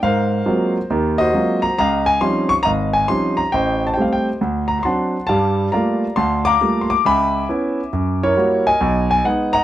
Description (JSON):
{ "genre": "solo jazz", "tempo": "136 BPM", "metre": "4/4", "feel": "swing 67% on 8ths", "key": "unclear", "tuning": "A4 = 441 Hz", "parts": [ { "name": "warm grand piano", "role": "solo", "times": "0.0-9.6 s", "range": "Ab1 to D6", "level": "-15 LUFS", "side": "equal", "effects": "none" } ], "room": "moderate studio reverb, RT60 0.5 s", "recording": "none", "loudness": "-15 LUFS", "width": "side -13 dB against mid", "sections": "0.0-9.6 A section", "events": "none", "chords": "0.0 Ab13; 1.8 Dbmaj9#11; 3.5 Am7b5; 4.4 D7; 5.3 Gm9; 7.0 Dbm7; 7.9 Gb7b9; 8.8 B6" }